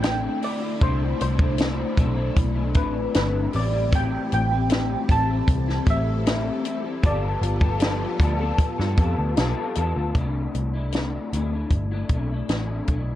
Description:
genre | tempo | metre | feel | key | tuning
indie pop, bedroom pop | 77 BPM | 4/4 | straight | unclear | A4 = 441 Hz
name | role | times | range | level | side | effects
warm analog keys | melody | 0.0-9.3 s | B4 to A5 | -29 LUFS | right 1 dB | wide subtle chorus, tape echo
electric guitar through a small old amp | accompaniment | 0.0-13.2 s | A2 to A4 | -28 LUFS | left 4 dB | ensemble chorus, warbly pitch drift
string machine, violas | sustained chords | 0.0-10.1 s | D3 to A4 | -35 LUFS | right 1 dB | phaser, ensemble chorus
vintage muted picked electric bass | bass | 0.0-13.2 s | G1 to G2 | -25 LUFS | equal | none
compact cocktail drum kit | drums | 0.0-13.1 s | hi-hat, kick drum, snare drum | -23 LUFS | equal | none
room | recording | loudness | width
small room ambience | cassette tape, lossy compression artefacts | -21 LUFS | side -13 dB against mid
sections
0.0-10.2 A section; 10.2-13.2 B section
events
none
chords
0.0 C69; 3.5 Am7; 7.0 G9; 10.2 C69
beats
0.03 | 0.81 1.59 2.37 3.15 | 3.92 4.70 5.48 6.26 | 7.04 7.81 8.59 9.37 | 10.15 10.93 11.71 12.49

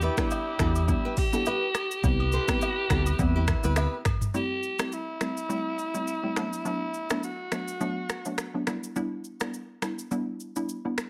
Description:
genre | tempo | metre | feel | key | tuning
afrobeats | 104 BPM | 4/4 | swing 55% on 16ths | A dorian | A4 = 436 Hz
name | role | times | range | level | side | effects
growling alto saxophone | melody | 0.0-8.6 s | E4 to G4 | -33 LUFS | equal | delay
mellow horn section | second line | 0.0-4.0 s | D4 to B4 | -40 LUFS | equal | none
flamenco guitar | riff | 0.0-4.0 s | E4 to D5 | -37 LUFS | equal | none
hollow-body short-scale fingered electric bass | bass | 0.0-3.9 s | C2 to E2 | -28 LUFS | equal | none
afro-pop drum kit | drums | 0.0-11.1 s | finger snaps, hi-hat, kick drum, rim click, shaker, toms | -32 LUFS | equal | none
hollow square pluck | accompaniment | 0.2-11.1 s | F#3 to E4 | -34 LUFS | equal | chorus
agogo bells and woodblock | percussion | 0.3-4.2 s | none | -40 LUFS | equal | none
room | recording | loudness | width
light reverb, small room ambience | none | -28 LUFS | mono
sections
0.0-4.3 A section; 4.3-11.1 B section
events
none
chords
0.0 Em7; 2.0 Cmaj7; 4.3 Am7; 6.4 Bm7; 8.7 Em7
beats
0.31 0.88 1.46 | 2.04 2.61 3.19 3.77 | 4.34 4.92 5.50 6.08 | 6.65 7.23 7.81 8.38 | 8.96 9.54 10.11 10.69

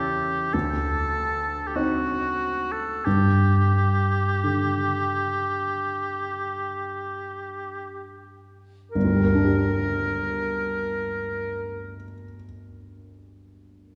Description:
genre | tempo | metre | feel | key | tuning
classical, romantic duo for oboe and grand piano | 37-52 BPM | 4/4 | rubato | G minor | A4 = 440 Hz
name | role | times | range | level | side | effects
clear oboe | melody | 0.0-11.9 s | F#4 to Bb4 | -29 LUFS | equal | none
warm baby grand piano | accompaniment | 0.0-14.0 s | G1 to G4 | -27 LUFS | equal | none
room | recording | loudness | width
wet concert hall reverb, RT60 2.2 s | heard from further back in the room | -25 LUFS | mono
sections
0.0-8.9 A section; 8.9-14.0 B section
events
slowing down 0.0-8.9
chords
0.0 A/E (rootless); 0.5 D5; 3.1 G5; 8.9 Gm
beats
0.53 1.75 | 3.05 4.43 5.85 7.35 | 8.95 10.51 12.11 13.70

